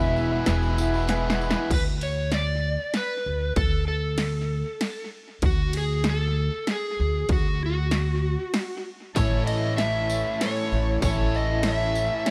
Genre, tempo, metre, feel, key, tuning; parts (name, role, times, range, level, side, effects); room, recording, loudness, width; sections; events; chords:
folk rock and heartland rock; 96 BPM; 3/4; straight; A4 = 440 Hz
overdriven slide guitar; melody; 0.0-12.3 s; F#4 to E5; -31 LUFS; equal; tape echo
bright baby grand piano; accompaniment; 0.0-1.7, 9.2-12.3 s; B3 to B5; -39 LUFS; equal
picked twelve-string acoustic guitar; accompaniment; 0.0-1.7, 9.2-12.3 s; E2 to E4; -34 LUFS; equal; tape echo
hand-pumped harmonium; sustained chords; 0.0-1.7, 9.1-12.3 s; E4 to A5; -37 LUFS; equal
biting overdriven guitar; riff; 0.0-1.7, 9.2-12.3 s; E2 to A4; -34 LUFS; equal; tape echo
upright bass; bass; 0.0-12.1 s; E1 to D2; -28 LUFS; equal
tambourine; percussion; 0.2-1.5, 9.2-12.1 s; -45 LUFS; equal; tape echo
techno drum kit; drums; 0.5-12.3 s; crash cymbal, hi-hat, kick drum, ride cymbal, snare drum; -30 LUFS; equal; overdrive
light reverb; echo-heavy mix; -25 LUFS; mono
0.0-1.7 A section; 1.7-12.3 B section
grand piano fill 0.5-1.7; drum fill 1.1-1.7
0.0 E; 1.7 D; 9.2 A